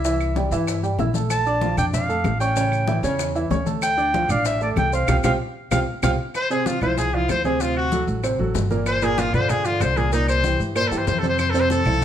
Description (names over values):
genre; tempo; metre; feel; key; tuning
latin, salsa; 190 BPM; 4/4; straight; F major; A4 = 440 Hz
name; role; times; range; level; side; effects
warm clarinet; melody; 0.0-6.1 s; D5 to A5; -24 LUFS; right 1 dB; plate reverb
warm concert grand piano; accompaniment; 0.0-12.0 s; Bb2 to E6; -24 LUFS; right 2 dB; none
upright bass; bass; 0.0-12.0 s; G1 to G2; -25 LUFS; equal; none
bongos; percussion; 0.0-12.0 s; none; -32 LUFS; left 7 dB; none
congas; percussion; 0.0-12.0 s; none; -29 LUFS; left 1 dB; none
maracas; percussion; 0.0-12.0 s; none; -36 LUFS; left 8 dB; none
claves; percussion; 0.2-12.0 s; none; -35 LUFS; right 3 dB; none
bright trumpet; melody; 6.4-12.0 s; Eb4 to C5; -22 LUFS; left 2 dB; plate reverb
room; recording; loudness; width
moderate large studio reverb, RT60 0.9 s; none; -19 LUFS; side -10 dB against mid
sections
0.0-6.3 A section; 6.3-12.0 B section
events
drum fill 5.1-6.3; band accent 5.1-6.3; trumpet solo 6.3-12.0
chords
0.0 C7; 1.3 Bbmaj7; 2.6 A7; 3.8 Dm7; 5.1 Csus4; 6.3 F5; 7.6 D7; 8.9 Gm7; 10.1 C7; 11.4 Fmaj7